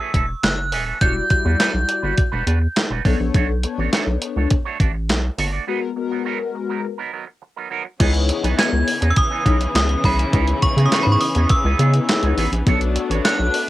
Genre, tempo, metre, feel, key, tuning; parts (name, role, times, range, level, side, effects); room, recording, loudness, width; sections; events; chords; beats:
early-eighties boogie funk; 103 BPM; 4/4; straight; A4 = 438 Hz
metallic FM bell; melody; 0.0-2.4, 8.6-13.7 s; B5 to G#6; -22 LUFS; equal; chorus, analog delay
electric guitar with an envelope filter; riff; 0.0-13.6 s; E3 to D5; -27 LUFS; right 8 dB; lush chorus, cassette tape
rubbery square bass; bass; 0.1-13.5 s; D#1 to C#3; -19 LUFS; equal
crisp 8-bit digital drum machine; drums; 0.1-13.7 s; crash cymbal, handclaps, hi-hat, kick drum, snare drum; -20 LUFS; equal; cassette tape
mellow synth brass; accompaniment; 1.0-13.6 s; G3 to D5; -25 LUFS; left 7 dB; chorus, cassette tape
bright studio string section; sustained chords; 8.0-13.7 s; C#3 to D4; -27 LUFS; equal; cassette tape
light reverb; home recording on cassette; -17 LUFS; side -15 dB against mid
0.0-8.0 A section; 8.0-13.7 B section
break 5.7-8.0
0.0 F#m9; 1.0 Em9; 3.1 Bm9; 5.7 G#m9; 8.0 C#m9; 12.7 Bm9
0.43 | 1.01 1.60 2.18 2.76 | 3.35 3.93 4.51 5.09 | 5.67 6.26 6.84 7.42 | 8.01 8.59 9.17 9.75 | 10.34 10.92 11.50 12.08 | 12.66 13.25